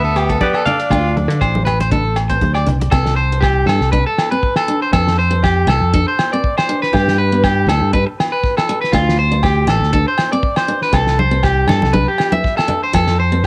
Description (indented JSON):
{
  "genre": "highlife guitar band",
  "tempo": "120 BPM",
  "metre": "4/4",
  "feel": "swing 54% on 16ths",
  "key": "C major",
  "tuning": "A4 = 440 Hz",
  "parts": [
    { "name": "semi-hollow electric guitar", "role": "melody", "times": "0.0-1.6 s", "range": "B4 to F5", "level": "-23 LUFS", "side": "equal", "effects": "cassette tape, analog delay" },
    { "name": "growling tenor saxophone", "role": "second line", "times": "0.0-1.6 s", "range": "B3 to D4", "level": "-26 LUFS", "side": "equal", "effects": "cassette tape" },
    { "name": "picked steel-string acoustic guitar", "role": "accompaniment", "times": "0.0-13.5 s", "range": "B3 to E4", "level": "-25 LUFS", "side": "equal", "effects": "cassette tape" },
    { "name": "electric guitar at the edge of break-up", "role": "arpeggios", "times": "0.0-13.5 s", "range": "F4 to E5", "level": "-20 LUFS", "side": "equal", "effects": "cassette tape, analog delay" },
    { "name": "fingered electric bass", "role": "bass", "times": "0.0-13.5 s", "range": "A1 to D3", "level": "-18 LUFS", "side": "equal", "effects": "none" },
    { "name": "cloth-damped thuddy drum kit", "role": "drums", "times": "0.2-13.5 s", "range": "hi-hat, kick drum, rim click, snare drum", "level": "-23 LUFS", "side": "equal", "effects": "cassette tape" },
    { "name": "agogo bells", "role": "percussion", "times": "0.2-13.1 s", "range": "none", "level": "-25 LUFS", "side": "equal", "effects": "none" },
    { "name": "congas", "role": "percussion", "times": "0.4-2.9, 11.2-12.8 s", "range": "none", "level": "-24 LUFS", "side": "equal", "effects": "none" }
  ],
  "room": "little or no reverb",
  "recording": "home recording on cassette",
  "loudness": "-15 LUFS",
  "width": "mono",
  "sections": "0.0-2.9 A section; 2.9-13.5 B section",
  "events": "none",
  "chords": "0.0 G7; 0.9 Dm; 2.9 C5; 4.9 F; 6.9 G; 8.9 D5; 10.9 C5; 12.9 F",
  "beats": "0.41 | 0.91 1.41 1.91 2.42 | 2.92 3.42 3.92 4.42 | 4.92 5.42 5.93 6.43 | 6.93 7.43 7.93 8.43 | 8.93 9.43 9.93 10.43 | 10.93 11.43 11.93 12.43 | 12.94 13.44"
}